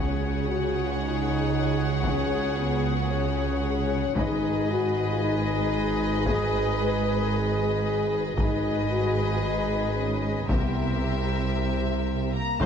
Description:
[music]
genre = cinematic, epic orchestral film score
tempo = 114 BPM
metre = 4/4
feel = straight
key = unclear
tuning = A4 = 441 Hz
[part]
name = rich symphonic violin section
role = melody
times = 0.0-12.7 s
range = Eb5 to Bb5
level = -34 LUFS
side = left 5 dB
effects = none
[part]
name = warm symphonic violin section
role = second line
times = 0.0-12.7 s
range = F4 to Db5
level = -37 LUFS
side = left 5 dB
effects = none
[part]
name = warm symphonic viola section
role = accompaniment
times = 0.0-12.7 s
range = F4 to C5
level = -36 LUFS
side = equal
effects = none
[part]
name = clear woodwind section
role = sustained chords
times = 0.0-12.7 s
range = Eb4 to C6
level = -34 LUFS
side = left 2 dB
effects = none
[part]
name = dark French horn section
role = sustained chords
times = 0.0-12.7 s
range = A3 to Cb5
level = -29 LUFS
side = left 4 dB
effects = none
[part]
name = mellow tuba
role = bass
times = 0.0-12.7 s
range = F1 to Db2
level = -33 LUFS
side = right 4 dB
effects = none
[part]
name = rich symphonic double bass section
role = bass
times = 0.0-12.7 s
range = F1 to Db2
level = -31 LUFS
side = right 3 dB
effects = none
[part]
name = warm symphonic cello section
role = bass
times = 0.0-12.7 s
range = F2 to Db3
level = -32 LUFS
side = right 4 dB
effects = none
[part]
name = taiko ensemble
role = drums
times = 2.0-12.7 s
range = none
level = -29 LUFS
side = left 1 dB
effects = none
[sound]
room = moderate scoring stage reverb, RT60 1.8 s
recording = dark, warm production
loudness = -23 LUFS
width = side -7 dB against mid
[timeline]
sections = 0.0-12.6 A section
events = none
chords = 0.0 Dbsus4; 4.2 Abm; 10.5 C7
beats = 0.46 0.98 1.51 | 2.04 2.57 3.10 3.63 | 4.16 4.68 5.21 5.74 | 6.27 6.80 7.33 7.86 | 8.38 8.91 9.44 9.97 | 10.50 11.03 11.55 12.08 | 12.61

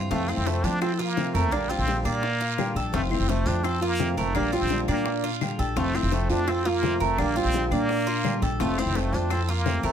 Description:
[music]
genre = latin, Cuban son and guajira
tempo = 170 BPM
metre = 4/4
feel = straight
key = F major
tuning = A4 = 440 Hz
[part]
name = fingerpicked steel-string acoustic guitar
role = accompaniment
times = 0.0-9.9 s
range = C3 to G4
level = -31 LUFS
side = left 3 dB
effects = none
[part]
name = Cuban tres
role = arpeggios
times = 0.0-9.9 s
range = F4 to D5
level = -32 LUFS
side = right 4 dB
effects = none
[part]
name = upright bass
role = bass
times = 0.0-9.9 s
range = F1 to F3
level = -28 LUFS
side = equal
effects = none
[part]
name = trumpet with plunger mute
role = melody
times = 0.1-9.9 s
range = A3 to D4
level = -29 LUFS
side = right 1 dB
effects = none
[part]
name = nylon-string guitar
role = second line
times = 0.1-9.9 s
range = C4 to F4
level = -30 LUFS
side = equal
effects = none
[part]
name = bongos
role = percussion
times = 0.1-9.9 s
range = none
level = -34 LUFS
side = left 7 dB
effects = none
[part]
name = guiro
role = percussion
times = 0.1-9.9 s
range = none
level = -39 LUFS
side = right 8 dB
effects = none
[part]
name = claves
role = percussion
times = 0.3-9.5 s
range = none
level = -39 LUFS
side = left 11 dB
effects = none
[sound]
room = light reverb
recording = none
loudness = -22 LUFS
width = side -8 dB against mid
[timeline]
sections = 0.1-9.9 A section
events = none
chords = 0.1 F; 1.5 Bb6; 2.9 F; 4.4 Bb6; 5.8 F; 7.2 Bb6; 8.6 F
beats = | 0.11 0.47 0.82 1.17 | 1.52 1.88 2.23 2.58 | 2.94 3.29 3.65 4.00 | 4.35 4.71 5.06 5.42 | 5.77 6.12 6.48 6.83 | 7.18 7.54 7.89 8.24 | 8.60 8.95 9.30 9.66

